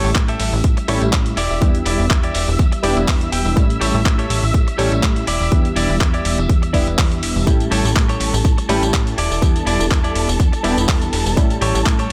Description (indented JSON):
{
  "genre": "filtered disco house",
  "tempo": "123 BPM",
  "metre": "4/4",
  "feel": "swing 54% on 16ths",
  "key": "E dorian",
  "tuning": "A4 = 441 Hz",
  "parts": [
    { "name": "barky reed electric piano", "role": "accompaniment", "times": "0.0-12.1 s", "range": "G3 to G4", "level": "-25 LUFS", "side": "equal", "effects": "phaser, sidechain pumping, low-pass filter" },
    { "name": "warm studio string section", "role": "sustained chords", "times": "0.0-12.1 s", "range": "A4 to E6", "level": "-30 LUFS", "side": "equal", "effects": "vintage 12-bit sampler grit, sidechain pumping, low-pass filter" },
    { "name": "clean electric guitar", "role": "riff", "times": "0.0-12.1 s", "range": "E4 to G5", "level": "-26 LUFS", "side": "equal", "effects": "sidechain pumping, low-pass filter" },
    { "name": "plucky analog bass", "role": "bass", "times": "0.0-12.1 s", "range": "E1 to A2", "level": "-23 LUFS", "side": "equal", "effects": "sidechain pumping, low-pass filter" },
    { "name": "tambourine", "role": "percussion", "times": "0.0-12.0 s", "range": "none", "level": "-37 LUFS", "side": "equal", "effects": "none" },
    { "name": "dusty soul sampler-style drum kit", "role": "drums", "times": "0.2-12.1 s", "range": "handclaps, hi-hat, tambourine", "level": "-26 LUFS", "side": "equal", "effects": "sidechain pumping on hats, sidechain pumping on perc" },
    { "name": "electronic kick drum", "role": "drums", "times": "0.2-12.0 s", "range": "none", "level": "-19 LUFS", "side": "equal", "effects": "none" }
  ],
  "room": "light reverb",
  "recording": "none",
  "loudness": "-17 LUFS",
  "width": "mono",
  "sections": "0.0-12.1 A section",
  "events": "clean electric guitar fill 2.6-3.6",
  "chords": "0.0 A7; 1.4 Em7; 3.6 A7; 5.3 Em7; 7.5 A7; 9.2 Em7; 11.4 A7"
}